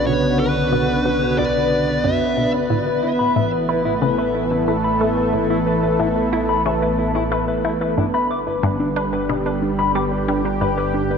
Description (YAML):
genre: ambient, sequencer-driven space music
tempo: 91 BPM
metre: 4/4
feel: straight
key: unclear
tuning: A4 = 440 Hz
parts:
  - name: smooth overdriven lead guitar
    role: melody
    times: 0.0-2.5 s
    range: B4 to E5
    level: -24 LUFS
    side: equal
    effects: tape echo
  - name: lush unison pad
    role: sustained chords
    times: 0.0-11.2 s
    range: C#3 to B4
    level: -20 LUFS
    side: right 1 dB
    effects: chorus
  - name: resonant blip pluck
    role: riff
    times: 0.0-10.7 s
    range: D2 to E4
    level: -26 LUFS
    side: left 1 dB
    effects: phaser, tape echo
  - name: analog drone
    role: bass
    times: 0.0-11.2 s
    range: G1 to B1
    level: -30 LUFS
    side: equal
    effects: chorus
  - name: mellow electric guitar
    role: arpeggios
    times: 2.7-11.2 s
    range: D4 to D6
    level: -22 LUFS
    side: left 3 dB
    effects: auto-pan, tape echo
room: wet plate reverb, RT60 3.6 s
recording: dreamy mix soaked in reverb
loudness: -17 LUFS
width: side -6 dB against mid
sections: 0.0-11.2 A section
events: fade-in on synth drone 0.0-11.2; filter sweep on synth arpeggio sound 0.0-11.2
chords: 0.0 Bmadd9; 2.7 Asus2; 8.0 G